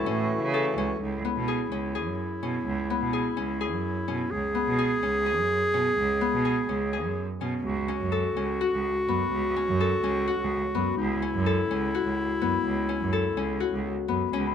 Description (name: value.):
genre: contemporary instrumental, chamber music in an uneven meter.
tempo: 252 BPM (eighths).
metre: 7/8.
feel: straight.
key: C# minor.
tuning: A4 = 440 Hz.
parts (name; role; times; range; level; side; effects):
clear clarinet; second line; 0.0-14.5 s; C#4 to G#4; -29 LUFS; equal; none.
hand-pumped harmonium; sustained chords; 0.0-1.0 s; E3 to F#4; -29 LUFS; right 1 dB; none.
Celtic harp; arpeggios; 0.0-14.5 s; B3 to A4; -30 LUFS; left 9 dB; none.
rich cello; bass; 0.1-14.5 s; C#2 to C#3; -29 LUFS; right 4 dB; none.
celesta; texture; 14.5 s; B5; -28 LUFS; left 17 dB; none.
room: light reverb.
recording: none.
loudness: -24 LUFS.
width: side -8 dB against mid.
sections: 0.0-1.0 A section; 1.0-14.3 B section.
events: none.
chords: 0.0 F#m7; 1.0 C#m7.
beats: 0.06 0.30 0.54 0.77 | 1.01 1.25 1.48 1.72 1.96 2.19 2.43 | 2.67 2.90 3.14 3.38 3.61 3.85 4.09 | 4.32 4.56 4.80 5.04 5.27 5.51 5.75 | 5.98 6.22 6.46 6.70 6.93 7.17 7.41 | 7.65 7.89 8.13 8.36 8.60 8.84 9.08 | 9.32 9.56 9.79 10.03 10.27 10.51 10.75 | 10.99 11.23 11.46 11.70 11.94 12.18 12.42 | 12.66 12.90 13.14 13.37 13.61 13.85 14.09 | 14.33.